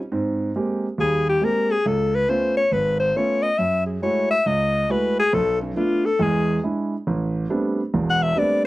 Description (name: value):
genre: jazz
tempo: 138 BPM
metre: 4/4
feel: swing 65% on 8ths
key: unclear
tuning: A4 = 440 Hz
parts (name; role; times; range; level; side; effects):
- warm grand piano; accompaniment; 0.1-8.7 s; E1 to G4; -22 LUFS; right 2 dB; none
- breathy alto saxophone; melody; 1.0-8.6 s; C#4 to F#5; -20 LUFS; left 2 dB; none
room: light reverb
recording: dry, close 1970s-style studio recording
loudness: -19 LUFS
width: side -17 dB against mid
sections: 0.0-8.7 A section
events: alto saxophone solo 0.0-8.7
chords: 0.1 G#maj9; 1.9 C#7b13; 3.6 F#m9; 5.3 Bm7b5; 6.2 E7; 7.1 Am11